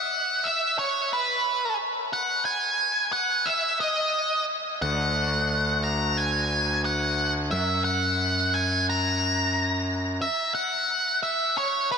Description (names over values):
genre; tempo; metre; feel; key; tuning
post-rock; 89 BPM; 4/4; straight; unclear; A4 = 439 Hz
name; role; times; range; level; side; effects
octave-fuzz lead guitar; melody; 0.0-12.0 s; B4 to A#5; -23 LUFS; equal; distortion, tape echo
fuzz picked electric bass; bass; 4.8-10.2 s; D2 to F#2; -27 LUFS; equal; overdrive
room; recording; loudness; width
wet huge ambient reverb, RT60 6.9 s; dreamy mix soaked in reverb; -23 LUFS; side -6 dB against mid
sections
0.0-10.2 A section; 10.2-12.0 A section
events
none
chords
0.0 N.C.; 4.8 D; 7.5 F#; 10.2 N.C.